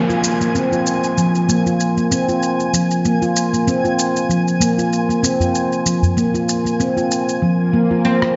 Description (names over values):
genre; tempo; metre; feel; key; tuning
organic downtempo; 96 BPM; 4/4; swing 55% on 16ths; unclear; A4 = 440 Hz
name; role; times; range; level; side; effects
downlifter and swell; sound effects; 0.0-8.4 s; none; -31 LUFS; equal; none
twinkling granular texture; texture; 0.0-7.4 s; Ab5; -29 LUFS; equal; built-in reverb
handpan; arpeggios; 0.1-8.4 s; F3 to F4; -18 LUFS; equal; low-pass filter, digital delay
electronic shaker and rim click; drums; 0.1-8.3 s; none; -27 LUFS; equal; none
udu; percussion; 5.4-6.1 s; none; -21 LUFS; equal; none
oud; melody; 8.0-8.4 s; C4; -20 LUFS; equal; vintage 12-bit sampler grit
room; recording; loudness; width
wet echo chamber reverb, RT60 1.9 s, digital ambience; dark, warm production, nothing above 7.7 kHz; -17 LUFS; mono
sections
0.0-8.4 A section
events
swell 7.6-8.4; drum fill 8.2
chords
0.0 Bb5